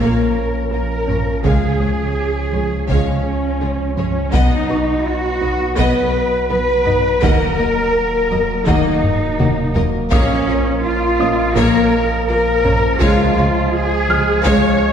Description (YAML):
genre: cinematic, hybrid orchestral and electronic film score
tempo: 83 BPM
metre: 4/4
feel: straight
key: Bb phrygian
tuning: A4 = 439 Hz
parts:
  - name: warm studio violin section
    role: melody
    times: 0.0-14.8 s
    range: Ab4 to F#5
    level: -29 LUFS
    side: left 4 dB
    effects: none
  - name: rich symphonic violin section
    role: second line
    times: 0.0-14.8 s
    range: F4 to D#5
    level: -28 LUFS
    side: left 2 dB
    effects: none
  - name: clear symphonic viola section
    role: accompaniment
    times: 0.0-14.8 s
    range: Ab3 to B3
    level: -23 LUFS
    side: left 1 dB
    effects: none
  - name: clear trombone section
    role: sustained chords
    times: 0.0-14.9 s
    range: F3 to Db4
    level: -25 LUFS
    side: right 3 dB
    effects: none
  - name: warm French horn section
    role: sustained chords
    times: 0.0-14.9 s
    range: Db4 to Db5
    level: -22 LUFS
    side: left 2 dB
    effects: none
  - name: thumb-piano-like synth pluck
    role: arpeggios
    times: 0.0-14.7 s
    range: Db3 to B4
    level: -25 LUFS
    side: equal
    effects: chorus, ping-pong delay
  - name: punchy sub bass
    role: bass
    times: 0.0-14.9 s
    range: Eb1 to Db2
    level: -24 LUFS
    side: equal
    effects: none
  - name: rich symphonic cello section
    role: bass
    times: 0.0-14.9 s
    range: Db4 to Db5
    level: -21 LUFS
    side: right 2 dB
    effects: none
  - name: rich symphonic double bass section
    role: bass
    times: 0.0-14.5 s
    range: Bb1 to Eb2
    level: -24 LUFS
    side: right 2 dB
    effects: none
  - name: solo taiko drums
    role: drums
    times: 0.0-14.9 s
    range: none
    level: -21 LUFS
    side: left 1 dB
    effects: none
  - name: felt-muted upright piano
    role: texture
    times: 0.0-14.9 s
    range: Eb5 to F6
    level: -27 LUFS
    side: equal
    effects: ping-pong delay
room: wet scoring stage reverb, RT60 1.6 s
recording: heard from further back in the room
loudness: -14 LUFS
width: side -8 dB against mid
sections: 0.0-14.9 A section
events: drum fill 9.0-10.1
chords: 0.0 Bbm; 1.4 Db; 4.3 B; 7.2 Ebm; 10.1 Bbm; 13.0 Db